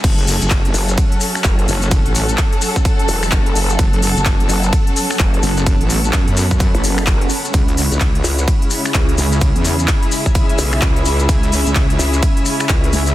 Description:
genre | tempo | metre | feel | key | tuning
bass house | 128 BPM | 4/4 | swing 61% on 16ths | F# minor | A4 = 440 Hz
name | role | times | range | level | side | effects
dark studio string section | sustained chords | 0.0-13.1 s | C#3 to A4 | -23 LUFS | left 1 dB | sidechain pumping
wobble bass | bass | 0.0-13.1 s | F#1 to F#2 | -18 LUFS | equal | chorus, tube saturation, sidechain pumping
big-room dance drum kit | drums | 0.0-13.1 s | crash cymbal, finger snaps, handclaps, hi-hat, ride cymbal | -22 LUFS | equal | none
electronic kick drum | drums | 0.0-12.8 s | none | -16 LUFS | equal | none
maracas | percussion | 0.0-13.1 s | none | -25 LUFS | left 4 dB | none
granular cloud pad | texture | 0.0-13.1 s | C#4 to B5 | -24 LUFS | equal | built-in reverb, sidechain pumping
growl bass | bass | 0.7-12.9 s | E1 to C#2 | -18 LUFS | equal | chorus, overdrive, sidechain pumping
room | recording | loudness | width
little or no reverb | dense, heavily limited modern master | -13 LUFS | side -15 dB against mid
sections
0.0-13.1 A section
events
none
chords
0.0 F#m; 7.5 C#m

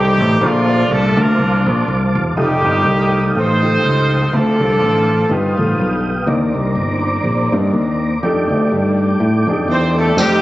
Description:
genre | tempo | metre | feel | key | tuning
uptempo gospel | 123 BPM | 4/4 | swing 56% on 8ths | unclear | A4 = 440 Hz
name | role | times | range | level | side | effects
warm horn section | melody | 0.0-6.2, 9.7-10.4 s | F3 to C5 | -17 LUFS | right 1 dB | none
mellow tonewheel organ | sustained chords | 0.0-10.4 s | A4 to Eb6 | -22 LUFS | right 1 dB | fast rotary speaker, chorus vibrato
fingered electric bass | bass | 0.0-10.4 s | E1 to A2 | -16 LUFS | equal | none
dark baby grand piano | accompaniment | 0.4-10.4 s | G2 to A5 | -21 LUFS | left 2 dB | none
warm studio string section | sustained chords | 2.4-10.2 s | Eb3 to Eb4 | -27 LUFS | equal | none
tambourine | percussion | 10.2-10.3 s | none | -22 LUFS | left 1 dB | none
room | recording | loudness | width
light reverb, studio ambience | recorded on a phone in the room, club reverb, nothing above 7.7 kHz | -13 LUFS | side -16 dB against mid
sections
0.0-2.4 A section; 2.4-10.2 B section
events
none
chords
0.4 Bbmaj9; 2.4 F9; 4.3 Dm7; 5.3 G7b13; 6.3 Cm9; 8.2 F13

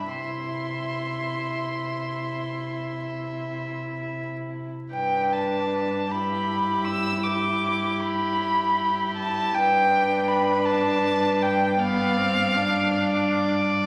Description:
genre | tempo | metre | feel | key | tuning
classical, slow romantic movement for string quartet | 48-55 BPM (dotted quarters) | 12/8 | rubato | C major, G major from 4.9 s | A4 = 440 Hz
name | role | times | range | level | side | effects
warm violin | melody | 0.0-13.7 s | F5 to E6 | -28 LUFS | equal | none
warm violin | second line | 0.0-13.9 s | G4 to E5 | -32 LUFS | equal | none
rich viola | accompaniment | 0.0-13.9 s | B3 to E4 | -32 LUFS | equal | none
dark cello | bass | 0.0-13.9 s | G2 to C3 | -33 LUFS | equal | none
room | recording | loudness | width
wet recital hall reverb, RT60 1.9 s | vinyl crackle | -25 LUFS | mono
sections
0.0-4.9 A section; 4.9-13.9 B section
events
none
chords
0.1 C; 4.9 G; 9.6 G7

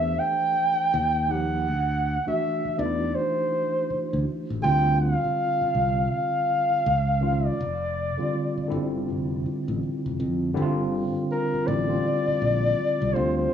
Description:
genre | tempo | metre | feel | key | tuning
R&B, neo-soul | 81 BPM | 4/4 | swing 62% on 16ths | G dorian | A4 = 440 Hz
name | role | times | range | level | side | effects
warm flugelhorn | melody | 0.0-13.5 s | Bb4 to G5 | -24 LUFS | equal | cassette tape, tape echo
mellow tine electric piano | accompaniment | 0.0-13.5 s | D3 to C5 | -28 LUFS | equal | overdrive, medium stereo tremolo, cassette tape
modern bright fingered electric bass | bass | 0.0-13.5 s | F1 to F2 | -26 LUFS | equal | none
room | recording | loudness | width
light reverb | home recording on cassette, studio ambience | -22 LUFS | side -8 dB against mid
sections
0.0-10.5 A section; 10.5-13.5 B section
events
none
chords
0.0 Fmaj7 (rootless); 0.9 Ebadd9; 1.7 D9; 4.6 G5; 6.8 C#add9; 7.6 F5; 10.5 Gm9

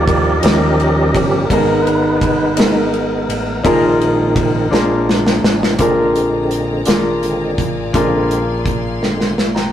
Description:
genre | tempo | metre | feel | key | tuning
slow gospel | 56 BPM (dotted quarters) | 6/8 | straight | unclear | A4 = 437 Hz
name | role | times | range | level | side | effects
warm baby grand piano | accompaniment | 0.0-9.7 s | Ab2 to Bb5 | -17 LUFS | left 1 dB | none
tonewheel organ | sustained chords | 0.0-9.3 s | D3 to Eb5 | -18 LUFS | right 1 dB | slow rotary speaker, overdrive, chorus vibrato
fingered electric bass | bass | 0.0-9.7 s | G1 to Eb2 | -23 LUFS | equal | none
modern studio drum kit | drums | 0.1-9.7 s | hi-hat, kick drum, ride cymbal, snare drum | -18 LUFS | equal | none
rich studio string section | sustained chords | 5.8-9.7 s | D5 to C6 | -29 LUFS | left 3 dB | none
room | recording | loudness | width
moderate stone room reverb, RT60 1.3 s | rough rehearsal-room recording, tube saturation | -13 LUFS | side -10 dB against mid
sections
0.0-5.8 A section; 5.8-9.7 B section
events
tonewheel organ solo 0.0-5.8, 5.8-9.7; drum fill 4.7-5.8, 9.0-9.7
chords
0.4 Eb7; 1.5 Abmadd9; 3.6 Bb7sus4; 4.7 Bb7

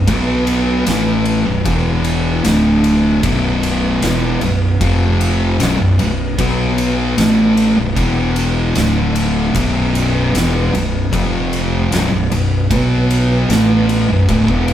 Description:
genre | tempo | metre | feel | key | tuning
stoner and doom metal | 76 BPM | 4/4 | straight | B phrygian | A4 = 440 Hz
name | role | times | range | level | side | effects
soft string machine | sustained chords | 0.0-14.7 s | F3 to F#5 | -27 LUFS | right 1 dB | ensemble chorus
fuzz fingered electric bass | bass | 0.0-14.7 s | B0 to B1 | -22 LUFS | equal | overdrive
thick fuzz guitar | riff | 0.1-14.7 s | B1 to B3 | -16 LUFS | left 3 dB | distortion
thick fuzz guitar | riff | 0.1-14.7 s | B1 to B3 | -18 LUFS | right 5 dB | distortion
oversized low-tuned drum kit | drums | 0.1-14.7 s | kick drum, ride cymbal, snare drum | -22 LUFS | equal | none
room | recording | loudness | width
moderate small room reverb, RT60 0.5 s | band playing live in one room | -13 LUFS | side -11 dB against mid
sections
0.0-14.7 A section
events
none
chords
0.0 B5; 1.7 E5; 2.4 D5; 3.2 B5; 4.8 F5; 5.6 B5; 8.0 E5; 8.8 D5; 9.5 B5; 11.1 F5; 11.9 Bm

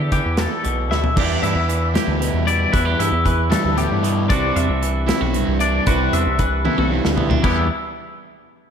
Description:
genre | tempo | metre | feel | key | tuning
math rock and midwest emo | 76 BPM (dotted quarters) | 6/8 | straight | E minor | A4 = 440 Hz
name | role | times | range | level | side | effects
twangy electric guitar | accompaniment | 0.0-7.7 s | E2 to G4 | -24 LUFS | right 7 dB | slapback echo
twangy electric guitar | arpeggios | 0.0-7.7 s | E4 to E5 | -24 LUFS | left 6 dB | analog chorus, slapback echo
growling picked electric bass | bass | 0.0-7.7 s | B1 to D3 | -21 LUFS | equal | overdrive
loose indie drum kit | drums | 0.1-7.6 s | crash cymbal, hi-hat, kick drum, snare drum, toms | -23 LUFS | equal | none
overdriven semi-hollow guitar | riff | 1.2-7.6 s | C3 to E4 | -24 LUFS | left 1 dB | none
room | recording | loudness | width
moderate lush hall reverb, RT60 2.0 s, small room ambience | big arena sound | -16 LUFS | side -7 dB against mid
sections
0.0-1.2 A section; 1.2-7.4 B section; 7.4-8.7 C section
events
drum fill 0.9, 6.7-7.4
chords
0.0 Em7; 4.3 Cmaj9#11; 7.4 Em7

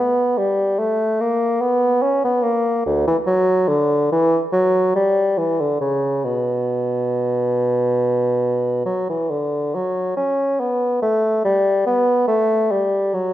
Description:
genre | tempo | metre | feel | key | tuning
classical, baroque-style fantasia for unaccompanied bassoon | 71 BPM | 4/4 | rubato | B minor | A4 = 439 Hz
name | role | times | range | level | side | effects
mellow bassoon | solo | 0.0-13.3 s | D2 to C#4 | -16 LUFS | equal | none
room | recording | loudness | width
moderate recital hall reverb, RT60 1.3 s | none | -16 LUFS | side -13 dB against mid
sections
0.0-9.7 A section; 9.7-13.3 B section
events
none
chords
none

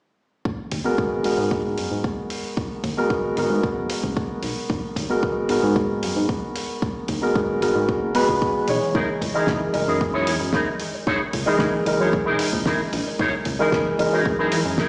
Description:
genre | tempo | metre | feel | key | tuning
nu-disco, nu disco | 113 BPM | 4/4 | straight | G# minor | A4 = 437 Hz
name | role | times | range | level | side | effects
chorused synth bass | bass | 0.5-14.8 s | E1 to G#2 | -30 LUFS | equal | sidechain pumping
electronic kick drum | drums | 0.5-14.9 s | none | -30 LUFS | equal | studio reverb
damped 70s drum kit | drums | 0.7-14.9 s | hi-hat, snare drum | -33 LUFS | equal | studio reverb
dark concert grand piano | accompaniment | 0.8-14.9 s | E3 to D#5 | -25 LUFS | equal | low-pass filter
electric guitar with an envelope filter | riff | 8.9-14.9 s | D#4 to C#5 | -26 LUFS | equal | ensemble chorus, analog delay
room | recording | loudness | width
moderate plate reverb, RT60 1.9 s, studio ambience | played on a big sound system in a bare room, large studio reverb, small speaker sound | -23 LUFS | mono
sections
0.5-14.9 A section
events
none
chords
0.5 G#m9; 8.9 F#13

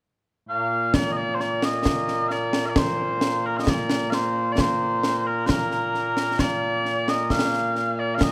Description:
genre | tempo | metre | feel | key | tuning
scottish traditional, Scottish pipe music | 66 BPM | 3/4 | straight | Bb major | A4 = 435 Hz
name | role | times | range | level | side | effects
mellow small bagpipes | melody | 0.5-8.3 s | Bb2 to F5 | -25 LUFS | equal | none
concert snare drum and concert bass drum | drums | 0.9-8.3 s | none | -27 LUFS | equal | none
room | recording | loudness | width
moderate recital hall reverb, RT60 1.7 s | none | -24 LUFS | mono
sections
0.9-8.3 A section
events
none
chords
none

